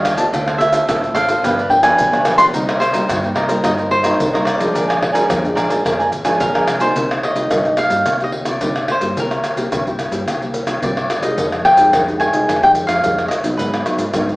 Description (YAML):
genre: samba and choro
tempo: 109 BPM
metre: 4/4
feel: straight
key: C minor from 7.0 s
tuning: A4 = 440 Hz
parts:
  - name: cavaquinho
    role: melody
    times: 0.0-14.1 s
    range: Bb4 to C6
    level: -16 LUFS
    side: equal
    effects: none
  - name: cavaquinho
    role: accompaniment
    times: 0.0-6.9 s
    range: D4 to Ab5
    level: -21 LUFS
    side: right 1 dB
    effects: none
  - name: nylon-string guitar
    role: accompaniment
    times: 0.0-14.4 s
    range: F2 to G4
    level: -23 LUFS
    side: equal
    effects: none
  - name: hollow-body short-scale fingered electric bass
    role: bass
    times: 0.0-14.4 s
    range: G1 to Ab2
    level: -29 LUFS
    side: equal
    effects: none
  - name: maracas, pandeiro, tamborim and surdo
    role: percussion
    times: 0.1-14.4 s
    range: none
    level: -19 LUFS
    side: equal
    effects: none
room: wet stone room reverb, RT60 1.0 s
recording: band playing live in one room, small speaker sound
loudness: -14 LUFS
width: side -21 dB against mid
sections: 0.0-7.0 A section; 7.0-14.4 B section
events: none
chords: 0.3 Dm7; 1.4 G7; 2.5 Cm7; 4.7 Bb7; 7.0 Cm7; 9.2 C7; 11.4 Fm9; 13.6 Abm7